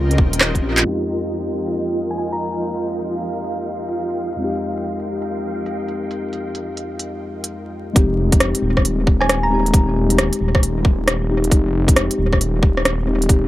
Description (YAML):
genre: future garage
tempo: 135 BPM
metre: 4/4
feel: swing 65% on 16ths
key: F minor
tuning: A4 = 439 Hz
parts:
  - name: muted felt-like synth keys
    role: accompaniment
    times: 0.0-13.5 s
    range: F2 to G4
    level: -23 LUFS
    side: left 2 dB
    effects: chorus, vintage 12-bit sampler grit, sidechain pumping, dub echo
  - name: granular cloud pad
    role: sustained chords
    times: 0.0-7.5 s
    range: F4 to G5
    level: -26 LUFS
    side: right 1 dB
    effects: built-in reverb, sidechain pumping
  - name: swelling detuned saw bass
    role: bass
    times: 0.0-0.8, 8.0-13.5 s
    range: Eb1 to Db2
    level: -20 LUFS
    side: equal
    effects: sidechain pumping
  - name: organic electronic drum kit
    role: drums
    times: 0.1-13.4 s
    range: handclaps, hi-hat, rim click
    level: -19 LUFS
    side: equal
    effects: overdrive, low-pass filter on hats, low-pass filter on snare, low-pass filter on room, analog delay
  - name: electronic kick drum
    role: drums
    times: 0.2-0.6, 8.0-13.4 s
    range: none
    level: -14 LUFS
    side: equal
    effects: overdrive
  - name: wind-like tuned noise texture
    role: texture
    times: 2.4-7.5 s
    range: F5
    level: -32 LUFS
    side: right 3 dB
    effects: built-in reverb
  - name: thumb-piano-like synth pluck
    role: melody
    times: 2.1-2.8, 9.2-9.9 s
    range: Ab5 to Bb5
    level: -26 LUFS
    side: equal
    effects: chorus, tape echo
room: light reverb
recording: echo-heavy mix, vinyl crackle, low-pass filter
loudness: -17 LUFS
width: side -15 dB against mid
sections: 0.8-8.0 A section; 8.0-13.5 B section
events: drum fill 0.4-0.8; band accent 0.7; filter sweep on drum 0.8-8.0; filter sweep 0.8-8.0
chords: 0.0 Eb13; 0.8 Fm9